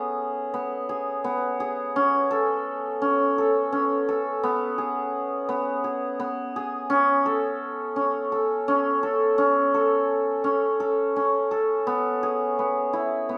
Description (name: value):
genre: contemporary instrumental, contemporary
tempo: 170 BPM (eighths)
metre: 7/8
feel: straight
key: unclear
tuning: A4 = 440 Hz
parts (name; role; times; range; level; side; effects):
- hammered dulcimer; solo; 0.0-13.4 s; B3 to A4; -24 LUFS; equal; none
room: moderate recital hall reverb, RT60 1.6 s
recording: dark, warm production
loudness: -24 LUFS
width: mono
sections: 0.0-11.9 A section; 11.9-13.4 B section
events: none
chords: 0.0 G#m/B; 1.9 A; 11.9 E